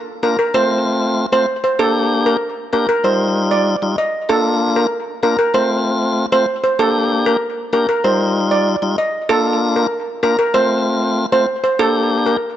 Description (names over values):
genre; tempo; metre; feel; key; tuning
dancehall; 96 BPM; 4/4; straight; Bb major; A4 = 441 Hz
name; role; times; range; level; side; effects
steel pan; melody; 0.2-12.4 s; A4 to Eb5; -17 LUFS; right 2 dB; tape echo
tonewheel organ; accompaniment; 0.2-12.4 s; G3 to G4; -18 LUFS; left 2 dB; overdrive
room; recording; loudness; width
light reverb, studio reverb; nothing above 7.9 kHz; -14 LUFS; side -11 dB against mid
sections
0.0-12.6 A section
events
none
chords
0.0 Bb; 0.5 F; 1.8 Gm; 3.0 Ebadd9; 4.3 Bb; 5.5 F; 6.8 Gm; 8.0 Ebadd9; 9.3 Bb; 10.5 F; 11.8 Gm